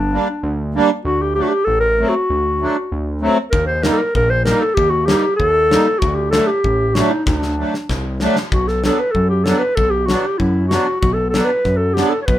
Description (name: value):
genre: klezmer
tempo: 96 BPM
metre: 2/4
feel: straight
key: D phrygian dominant, B minor from 8.5 s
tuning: A4 = 441 Hz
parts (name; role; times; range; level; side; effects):
- dark clarinet; melody; 0.0-12.4 s; D4 to C#5; -17 LUFS; equal; none
- fat analog bass; bass; 0.0-12.4 s; G1 to F#2; -20 LUFS; equal; none
- accordion; accompaniment; 0.1-12.1 s; F#3 to Eb4; -18 LUFS; right 2 dB; light tremolo tuning
- gated 80s drum kit; drums; 3.5-12.4 s; kick drum, snare drum; -22 LUFS; left 1 dB; none
room: moderate studio ambience, RT60 0.5 s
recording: minimal, uncompressed stereo recording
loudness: -14 LUFS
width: side -12 dB against mid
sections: 0.0-8.5 A section; 8.5-12.4 B section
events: drum fill 7.3-8.5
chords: 0.0 Gm; 1.1 D; 3.5 Eb; 6.0 D; 8.5 Bm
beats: 0.43 | 1.05 1.67 | 2.29 2.92 | 3.54 4.16 | 4.78 5.41 | 6.03 6.65 | 7.28 7.90 | 8.53 9.15 | 9.78 10.40 | 11.03 11.66 | 12.29